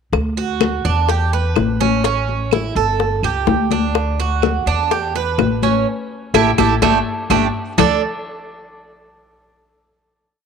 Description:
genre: latin, Cuban son and guajira.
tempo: 125 BPM.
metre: 4/4.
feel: straight.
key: D major.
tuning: A4 = 440 Hz.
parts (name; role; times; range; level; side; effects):
upright bass; bass; 0.1-8.0 s; G1 to E2; -20 LUFS; equal; none.
bongos; percussion; 0.1-7.9 s; none; -21 LUFS; left 12 dB; none.
claves; percussion; 0.1-7.9 s; none; -26 LUFS; right 14 dB; none.
congas; percussion; 0.1-7.9 s; none; -21 LUFS; left 10 dB; none.
Cuban tres; arpeggios; 0.4-8.0 s; A3 to D5; -19 LUFS; right 9 dB; none.
room: moderate spring reverb, RT60 2.7 s.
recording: 1960s-style stereo with parts hard left and right.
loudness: -15 LUFS.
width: side -6 dB against mid.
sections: 0.1-7.8 montuno (vamp); 7.8-9.7 final chord.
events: band accent 5.9-7.8; drum fill 6.8-7.8.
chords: 0.1 D; 1.1 Em; 2.0 A7; 3.0 Gsus2; 4.0 D; 4.9 Em; 5.9 A5; 6.8 Gsus2; 7.8 D5.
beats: | 0.13 0.61 1.08 1.56 | 2.04 2.52 3.00 3.48 | 3.95 4.43 4.91 5.39 | 5.87 6.35 6.83 7.31 | 7.79.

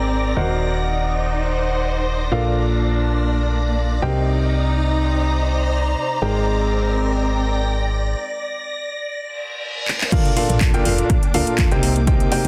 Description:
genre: piano house.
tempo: 123 BPM.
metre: 4/4.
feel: swing 53% on 16ths.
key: Bb major.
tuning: A4 = 441 Hz.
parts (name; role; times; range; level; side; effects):
string machine, violins; sustained chords; 0.0-12.5 s; D5 to Bb6; -31 LUFS; equal; ensemble chorus, sidechain pumping.
clear baby grand piano; riff; 0.0-12.5 s; Bb2 to G5; -25 LUFS; equal; sidechain pumping, low-pass filter, digital delay.
solid FM bass; bass; 0.0-12.5 s; Eb1 to Bb2; -23 LUFS; equal; sidechain pumping.
muted studio string section; texture; 0.0-12.5 s; Bb3 to Bb5; -28 LUFS; equal; sidechain pumping.
reverse cymbal and sub drop; sound effects; 9.4-12.1 s; none; -32 LUFS; equal; none.
house drum kit; drums; 9.9-12.5 s; crash cymbal, handclaps, hi-hat; -27 LUFS; equal; overdrive.
electronic kick drum; drums; 10.1-12.2 s; none; -21 LUFS; equal; overdrive.
room: light reverb.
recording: dense, heavily limited modern master.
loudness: -20 LUFS.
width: mono.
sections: 0.0-10.1 A section; 10.1-12.5 B section.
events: filter sweep on grand piano 0.0-10.1; break 8.2-10.1; reverse cymbal 9.4-10.1; drum fill 9.9; drop 10.1-12.5; impact 10.1-12.1.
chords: 0.4 Ebm6; 2.3 Bbmaj7; 4.0 Cm7; 6.2 Abmaj9; 8.2 Bb/D; 10.1 Bbmaj7; 11.8 Cm7.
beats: | 0.37 0.85 1.34 1.83 | 2.32 2.81 3.29 3.78 | 4.27 4.76 5.24 5.73 | 6.22 6.71 7.20 7.68 | 8.17 8.66 9.15 9.63 | 10.12 10.61 11.10 11.59 | 12.07.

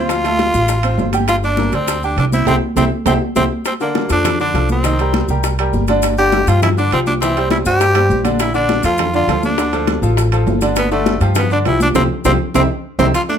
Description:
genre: latin, salsa.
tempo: 202 BPM.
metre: 4/4.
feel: straight.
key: unclear.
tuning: A4 = 440 Hz.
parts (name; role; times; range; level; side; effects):
raspy tenor saxophone; melody; 0.0-13.4 s; A3 to G4; -18 LUFS; equal; plate reverb.
bright grand piano; accompaniment; 0.0-13.4 s; D3 to A5; -20 LUFS; equal; none.
upright bass; bass; 0.0-13.1 s; G1 to G2; -18 LUFS; equal; none.
bongos; percussion; 0.1-13.1 s; none; -25 LUFS; left 9 dB; none.
congas; percussion; 0.1-13.4 s; none; -22 LUFS; equal; none.
maracas; percussion; 0.1-13.4 s; none; -31 LUFS; left 8 dB; none.
timbales; percussion; 0.1-13.3 s; none; -24 LUFS; right 7 dB; none.
room: moderate studio ambience, RT60 0.5 s.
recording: close, detailed microphones.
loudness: -13 LUFS.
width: side -8 dB against mid.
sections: 0.0-3.7 A section; 3.7-13.1 B section.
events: drum fill 2.5-3.7, 8.0-8.4, 12.4-13.1; band accent 2.5-3.7, 12.0-13.1.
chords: 0.1 Dm7; 1.3 Gm; 2.5 C; 3.7 Bbmaj7; 4.8 Cm7; 6.0 G5; 7.2 C; 8.4 Bbmaj7; 9.6 Dm; 10.8 G5; 12.0 Csus4; 12.5 C.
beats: | 0.10 0.39 0.69 0.99 | 1.28 1.58 1.88 2.17 | 2.47 2.77 3.06 3.36 | 3.66 3.95 4.25 4.55 | 4.84 5.14 5.43 5.73 | 6.03 6.32 6.62 6.92 | 7.21 7.51 7.80 8.10 | 8.40 8.69 8.99 9.29 | 9.58 9.88 10.18 10.47 | 10.77 11.06 11.36 11.66 | 11.95 12.25 12.55 12.84 | 13.14.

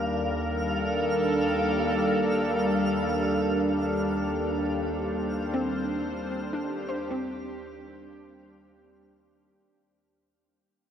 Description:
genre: ambient.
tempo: free time.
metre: none.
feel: none.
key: unclear.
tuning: A4 = 439 Hz.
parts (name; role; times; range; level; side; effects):
evolving wavetable pad; sustained chords; 0.0-10.2 s; Eb2 to C5; -26 LUFS; equal; chorus, built-in reverb, shimmer reverb.
twinkling granular texture; texture; 0.0-10.2 s; F5; -34 LUFS; right 1 dB; built-in reverb, shimmer reverb.
soft round pluck; arpeggios; 5.5-9.9 s; C4 to C5; -34 LUFS; left 1 dB; ensemble chorus, tape echo.
room: wet huge ambient reverb, RT60 7.4 s.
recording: none.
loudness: -25 LUFS.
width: side -8 dB against mid.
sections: 0.0-10.2 A section.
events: fade-out on synth texture 0.0-10.2; fade-out 2.0-10.2.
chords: 0.0 Gm/Eb.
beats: free time.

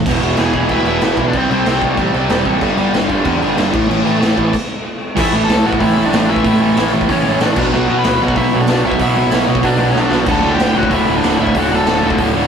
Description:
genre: punk rock.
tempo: 188 BPM.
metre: 4/4.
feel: straight.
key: unclear.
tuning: A4 = 440 Hz.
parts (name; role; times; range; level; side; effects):
distorted electric guitar; riff; 0.0-12.5 s; D2 to C4; -14 LUFS; right 1 dB; distortion.
growling picked electric bass; bass; 0.0-12.5 s; D1 to B2; -22 LUFS; equal; overdrive.
raw garage drum kit; drums; 0.1-12.3 s; crash cymbal, hi-hat, kick drum, snare drum; -19 LUFS; equal; none.
cranked stack guitar; melody; 0.4-1.8, 5.2-12.2 s; C4 to B5; -20 LUFS; left 1 dB; overdrive.
room: moderate stone room reverb, RT60 1.2 s.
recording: rough rehearsal-room recording.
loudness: -12 LUFS.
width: side -7 dB against mid.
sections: 0.1-5.2 A section; 5.2-12.5 B section.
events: stop 4.5-5.2; drum fill 10.0-10.3.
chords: 0.1 E; 1.3 C5; 2.6 G5; 3.7 A5; 5.2 A; 7.6 Bm; 10.3 D.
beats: | 0.06 0.38 0.70 1.02 | 1.34 1.66 1.98 2.30 | 2.62 2.94 3.26 3.58 | 3.90 4.21 4.53 4.85 | 5.17 5.49 5.81 6.13 | 6.45 6.77 7.09 7.41 | 7.73 8.04 8.36 8.68 | 9.00 9.32 9.64 9.96 | 10.28 10.59 10.91 11.23 | 11.55 11.87 12.19.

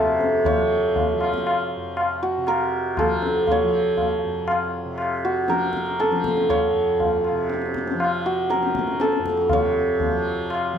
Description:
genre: indian classical, Hindustani.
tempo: 119 BPM.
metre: 3/4.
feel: straight.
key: F raga bhairav.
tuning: A4 = 440 Hz.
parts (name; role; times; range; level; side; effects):
santur; melody; 0.0-10.8 s; Gb4 to Gb5; -21 LUFS; right 1 dB; plate reverb.
tanpura; drone; 0.0-10.8 s; F2 to F3; -29 LUFS; right 1 dB; none.
tabla; percussion; 0.2-10.7 s; none; -26 LUFS; left 3 dB; none.
room: moderate small room reverb, RT60 0.5 s.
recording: none.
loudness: -20 LUFS.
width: side -8 dB against mid.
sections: 0.0-9.5 A section; 9.5-10.8 B section.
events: none.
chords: none.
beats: | 0.45 0.96 1.46 | 1.97 2.47 2.97 | 3.48 3.98 4.48 | 4.98 5.49 5.99 | 6.49 7.00 7.50 | 8.00 8.50 9.00 | 9.50 10.01 10.51.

